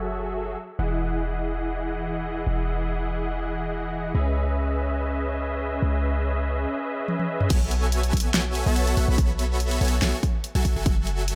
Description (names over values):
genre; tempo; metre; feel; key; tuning
future bass; 143 BPM; 4/4; swing 53% on 16ths, half-time; unclear; A4 = 440 Hz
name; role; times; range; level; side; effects
supersaw chords; riff; 0.0-11.3 s; E3 to B5; -30 LUFS; equal; sidechain pumping, low-pass filter, dub echo
warm 808-style bass; bass; 0.0-11.3 s; E1 to C#2; -28 LUFS; equal; sidechain pumping
pop drum kit; drums; 7.1-11.3 s; crash cymbal, hi-hat, snare drum, toms; -30 LUFS; equal; none
electronic kick drum; drums; 7.5-10.9 s; none; -26 LUFS; equal; none
room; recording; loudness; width
light reverb; none; -25 LUFS; mono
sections
0.0-7.5 A section; 7.5-11.3 B section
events
drum fill 7.1-7.5; drop 7.5-11.3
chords
0.0 F#m9; 0.8 Emaj9; 4.1 C#m9; 7.5 B13sus4; 10.7 F#m9